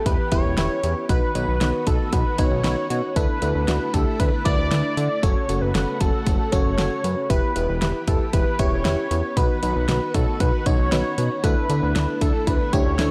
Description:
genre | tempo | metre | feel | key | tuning
synth-pop | 116 BPM | 4/4 | straight | E dorian | A4 = 438 Hz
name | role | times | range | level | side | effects
unison lead | melody | 0.0-13.1 s | A4 to D5 | -28 LUFS | equal | none
FM electric piano | accompaniment | 0.0-13.1 s | C#4 to C#5 | -29 LUFS | equal | chorus
string machine, violins | sustained chords | 0.0-13.1 s | C#3 to G4 | -36 LUFS | equal | ensemble chorus
fat analog bass | bass | 0.1-13.1 s | E1 to D3 | -26 LUFS | equal | none
pop drum kit | drums | 0.1-13.1 s | hi-hat, kick drum, snare drum | -25 LUFS | equal | none
room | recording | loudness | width
digital ambience | dry, gritty hardware recording | -22 LUFS | mono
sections
0.0-13.1 A section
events
none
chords
0.0 Em; 1.1 B; 3.2 Dsus2; 5.2 F#m; 7.3 Em; 9.4 B; 11.4 Dsus2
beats
0.06 0.58 | 1.09 1.61 2.13 2.65 | 3.16 3.68 4.20 4.71 | 5.23 5.75 6.26 6.78 | 7.30 7.82 8.33 8.85 | 9.37 9.89 10.40 10.92 | 11.44 11.96 12.47 12.99

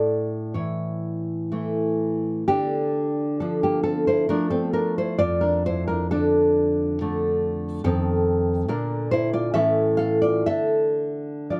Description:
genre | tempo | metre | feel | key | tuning
romantic piece for solo classical guitar | 68 BPM | 3/4 | uneven beats, rubato | D minor | A4 = 442 Hz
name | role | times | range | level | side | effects
nylon-string guitar | solo | 0.0-11.6 s | F2 to F5 | -23 LUFS | equal | none
room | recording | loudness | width
light reverb | close, detailed microphones | -23 LUFS | mono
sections
0.0-11.6 A section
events
none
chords
0.0 A; 2.5 Dm; 5.2 Dm/F; 7.8 F7; 8.7 Bb; 9.5 A; 10.5 Dm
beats
0.55 1.53 | 2.48 3.40 4.30 | 5.20 6.13 7.01 | 7.84 8.69 9.54 | 10.45 11.49

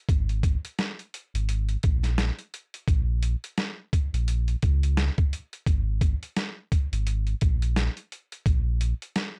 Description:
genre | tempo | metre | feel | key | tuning
hip hop, boom-bap hip-hop | 86 BPM | 4/4 | swing 58% on 16ths | unclear | A4 = 440 Hz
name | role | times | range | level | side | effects
sub bass with octave | bass | 0.1-8.9 s | Ab1 to Db2 | -27 LUFS | equal | none
boom bap sampler-style drum kit | drums | 0.1-9.3 s | hi-hat, kick drum, snare drum | -28 LUFS | equal | none
room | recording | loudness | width
little or no reverb | dry, gritty hardware recording, cassette tape | -27 LUFS | mono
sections
0.0-9.4 A section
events
none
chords
none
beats
| 0.09 0.78 1.48 2.18 | 2.88 3.58 4.27 4.97 | 5.67 6.37 7.06 7.76 | 8.46 9.16

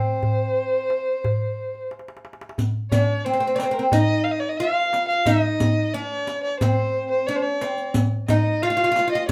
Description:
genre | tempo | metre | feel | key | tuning
Arabic maqam ensemble | 90 BPM | 4/4 | straight | unclear | A4 = 440 Hz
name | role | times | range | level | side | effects
oud | melody | 0.0-9.3 s | C4 to F4 | -27 LUFS | equal | none
dark violin | second line | 0.0-9.3 s | Bb4 to F5 | -26 LUFS | equal | none
darbuka | percussion | 0.2-9.3 s | none | -26 LUFS | equal | none
riq | percussion | 2.6-9.3 s | none | -31 LUFS | equal | none
room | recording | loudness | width
wet studio reverb, RT60 0.5 s | none | -22 LUFS | mono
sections
0.0-2.6 A section; 2.6-9.3 B section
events
drum fill 1.9-2.6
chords
none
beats
0.57 1.24 1.91 | 2.58 3.25 3.92 4.59 | 5.26 5.94 6.61 7.28 | 7.95 8.62 9.29

